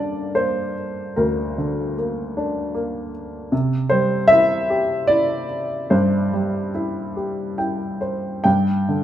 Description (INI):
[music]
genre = classical, lyrical solo piano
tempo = 68-79 BPM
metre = 3/4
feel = rubato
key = unclear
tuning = A4 = 440 Hz
[part]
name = warm upright piano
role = solo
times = 0.0-9.0 s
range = D2 to G5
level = -19 LUFS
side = equal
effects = none
[sound]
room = moderate recital hall reverb, RT60 1.3 s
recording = minimal, uncompressed stereo recording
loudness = -18 LUFS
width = side -11 dB against mid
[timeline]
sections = 0.0-9.0 A section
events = upright piano fill 7.2-8.4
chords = 0.0 Gm; 3.5 C; 8.4 G5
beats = 0.36 | 1.17 1.98 2.75 | 3.52 4.30 5.09 | 5.91 6.74 7.58 | 8.45